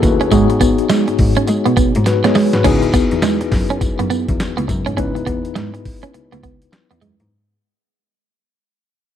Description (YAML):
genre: R&B, new jack swing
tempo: 103 BPM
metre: 4/4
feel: swing 62% on 16ths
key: C# minor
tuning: A4 = 440 Hz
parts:
  - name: mellow tine electric piano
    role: accompaniment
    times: 0.0-7.3 s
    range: B3 to C#5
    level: -19 LUFS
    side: left 6 dB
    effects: fast stereo tremolo
  - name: clean electric guitar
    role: riff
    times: 0.0-7.2 s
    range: G#3 to C#4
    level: -18 LUFS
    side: right 5 dB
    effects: wide subtle chorus
  - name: clear cello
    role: bass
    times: 0.0-7.3 s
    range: C#2 to G#3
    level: -20 LUFS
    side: equal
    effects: none
  - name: boom bap sampler-style drum kit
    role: drums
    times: 0.0-7.3 s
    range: crash cymbal, hi-hat, kick drum, snare drum, tambourine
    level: -19 LUFS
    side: left 1 dB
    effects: none
room: digital ambience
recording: none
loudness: -13 LUFS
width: side -10 dB against mid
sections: 0.0-2.6 A section; 2.6-7.3 B section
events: drum fill 2.1-2.6; fade-out 2.6-7.3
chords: 0.3 G#m7; 2.6 C#m9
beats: | 0.32 0.90 1.48 2.06 | 2.65 3.23 3.81 4.39 | 4.98 5.56 6.14 6.72